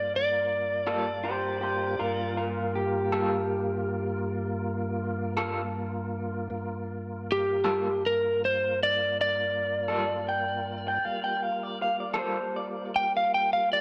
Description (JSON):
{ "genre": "blues", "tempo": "53 BPM (dotted quarters)", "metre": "12/8", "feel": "straight", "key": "G minor", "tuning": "A4 = 440 Hz", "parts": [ { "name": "electric slide guitar", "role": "melody", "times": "0.0-13.8 s", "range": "G4 to G5", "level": "-29 LUFS", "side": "equal", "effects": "none" }, { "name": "tonewheel organ", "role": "sustained chords", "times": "0.0-13.8 s", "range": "G2 to Bb4", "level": "-36 LUFS", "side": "equal", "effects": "slow rotary speaker, chorus vibrato" }, { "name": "electric guitar through a small old amp", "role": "accompaniment", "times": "0.9-12.4 s", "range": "G3 to A4", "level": "-33 LUFS", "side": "equal", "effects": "tremolo" }, { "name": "electric guitar through a small old amp", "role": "second line", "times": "1.2-12.9 s", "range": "F4 to G5", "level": "-32 LUFS", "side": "equal", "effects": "tape echo" } ], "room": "moderate echo chamber reverb, RT60 1.7 s, digital ambience", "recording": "none", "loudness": "-29 LUFS", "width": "mono", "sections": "0.0-13.8 A section", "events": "none", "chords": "0.0 Gm7" }